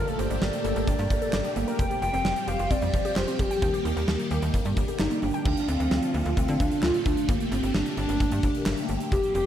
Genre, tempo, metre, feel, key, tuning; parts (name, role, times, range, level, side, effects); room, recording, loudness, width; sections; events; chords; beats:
synth-pop; 131 BPM; 4/4; straight; G minor; A4 = 440 Hz
hollow clarinet-like synth lead; melody; 0.0-9.5 s; Bb3 to G5; -28 LUFS; equal; chorus, analog delay
string machine, full ensemble; sustained chords; 0.0-9.5 s; D3 to G4; -31 LUFS; left 1 dB; phaser, ensemble chorus
warbly dusty pluck; arpeggios; 0.0-5.4 s; G3 to G5; -34 LUFS; equal; chorus, phaser, analog delay
slap-like FM bass; bass; 0.0-9.4 s; F1 to D3; -30 LUFS; equal
huge arena drum kit; drums; 0.1-9.5 s; crash cymbal, handclaps, hi-hat, kick drum, snare drum; -29 LUFS; equal
moderate lush hall reverb, RT60 1.9 s, small room ambience; dreamy mix soaked in reverb; -23 LUFS; side -10 dB against mid
0.0-5.5 A section; 5.5-9.5 A section
0.0 Gmadd9; 1.8 Fsus2; 3.6 Eb; 4.5 Gm; 5.5 Dm; 7.3 Gmadd9
0.42 0.88 1.33 | 1.79 2.25 2.71 3.17 | 3.62 4.08 4.54 5.00 | 5.46 5.91 6.37 6.83 | 7.29 7.75 8.20 8.66 | 9.12